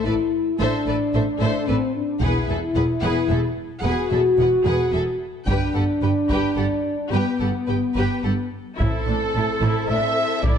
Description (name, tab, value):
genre	cinematic, epic orchestral film score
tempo	110 BPM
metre	3/4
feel	straight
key	A dorian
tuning	A4 = 440 Hz
part	clear chamber violin section	melody	0.0-10.6 s	C5 to G5	-34 LUFS	left 3 dB	none
part	warm symphonic violin section	second line	0.0-10.6 s	A4 to E5	-30 LUFS	left 2 dB	none
part	warm symphonic viola section	accompaniment	0.0-10.6 s	D4 to A4	-30 LUFS	equal	none
part	mellow French horn section	sustained chords	0.0-10.6 s	B3 to F#4	-23 LUFS	left 3 dB	none
part	rich symphonic cello section	bass	0.1-10.5 s	E2 to A2	-28 LUFS	right 2 dB	none
part	rich symphonic double bass section	bass	0.1-10.5 s	E1 to A1	-26 LUFS	right 3 dB	none
part	taiko ensemble	drums	2.2-10.6 s	none	-26 LUFS	equal	none
part	mellow trumpet	stabs	8.8-10.6 s	A4 to E5	-25 LUFS	right 3 dB	none
room	moderate scoring stage reverb, RT60 1.6 s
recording	dark, warm production, nothing above 10.3 kHz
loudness	-19 LUFS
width	side -8 dB against mid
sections	0.0-8.8 A section; 8.8-10.6 A section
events	none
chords	0.0 Am; 2.2 Eadd9; 5.5 G; 8.8 Am